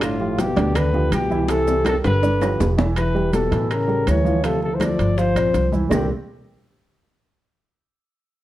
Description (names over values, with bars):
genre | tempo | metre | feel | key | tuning
Afro-Cuban jazz | 163 BPM | 4/4 | straight | C major | A4 = 440 Hz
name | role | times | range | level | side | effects
breathy trumpet | melody | 0.0-6.1 s | F4 to D5 | -23 LUFS | left 1 dB | plate reverb
dark French horn | second line | 0.0-6.1 s | A2 to F3 | -25 LUFS | left 3 dB | none
warm grand piano | accompaniment | 0.0-6.1 s | C3 to F5 | -25 LUFS | right 4 dB | none
upright bass | bass | 0.0-6.1 s | E1 to D2 | -22 LUFS | equal | none
bongos | percussion | 0.0-6.0 s | none | -29 LUFS | left 4 dB | none
claves | percussion | 0.0-6.0 s | none | -37 LUFS | right 1 dB | none
congas | percussion | 0.0-6.0 s | none | -28 LUFS | equal | none
maracas | percussion | 0.0-6.0 s | none | -45 LUFS | right 6 dB | none
timbales | percussion | 0.0-6.0 s | none | -28 LUFS | right 3 dB | none
room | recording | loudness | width
light reverb | worn, warbling old tape, cassette tape, warbly pitch drift | -17 LUFS | side -14 dB against mid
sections
0.0-3.0 A section; 3.0-5.9 B section; 5.9-7.4 C section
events
drum fill 1.5-3.0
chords
0.0 G13; 1.5 C6; 2.2 G6; 3.0 Em; 3.7 A7b9; 4.4 Dm7; 5.2 G7sus4; 5.9 Csus2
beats
| 0.02 0.39 0.76 1.13 | 1.50 1.86 2.23 2.60 | 2.97 3.34 3.70 4.07 | 4.44 4.81 5.18 5.55 | 5.92